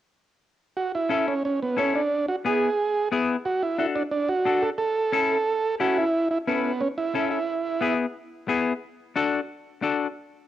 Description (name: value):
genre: latin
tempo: 179 BPM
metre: 4/4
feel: straight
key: A major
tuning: A4 = 440 Hz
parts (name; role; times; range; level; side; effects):
- combo organ; melody; 0.8-7.9 s; B3 to A4; -24 LUFS; right 3 dB; cassette tape
- semi-hollow electric guitar; accompaniment; 1.1-10.1 s; B3 to A4; -25 LUFS; left 5 dB; plate reverb
room: wet small room reverb, RT60 0.5 s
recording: home recording on cassette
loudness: -22 LUFS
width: side -12 dB against mid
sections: 0.8-6.1 A section; 6.1-10.5 B section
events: none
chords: 0.8 A; 2.1 E; 3.4 D; 4.8 A; 7.5 E; 8.8 D